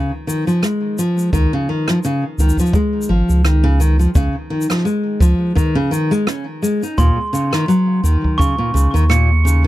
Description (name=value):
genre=folktronica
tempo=85 BPM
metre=4/4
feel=swing 56% on 16ths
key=Db major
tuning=A4 = 440 Hz
part: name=nylon-string guitar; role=arpeggios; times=0.0-9.7 s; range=Bb2 to Eb4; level=-17 LUFS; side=left 1 dB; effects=tape echo
part: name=shaker and rim click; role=drums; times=0.3-9.6 s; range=none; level=-26 LUFS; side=right 1 dB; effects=none
part: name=warm sub bass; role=bass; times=1.3-9.7 s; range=Ab1 to Eb2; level=-13 LUFS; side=equal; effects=none
part: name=kick drum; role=drums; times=1.3-8.6 s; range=none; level=-18 LUFS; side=equal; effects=none
part: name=glockenspiel with soft plastic mallets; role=second line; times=7.0-9.4 s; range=C6 to Db7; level=-22 LUFS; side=right 4 dB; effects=tape echo
room=light reverb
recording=dry, close 1970s-style studio recording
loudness=-14 LUFS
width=side -15 dB against mid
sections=0.0-9.7 A section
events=none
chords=0.0 Dbadd9; 7.0 Ebm7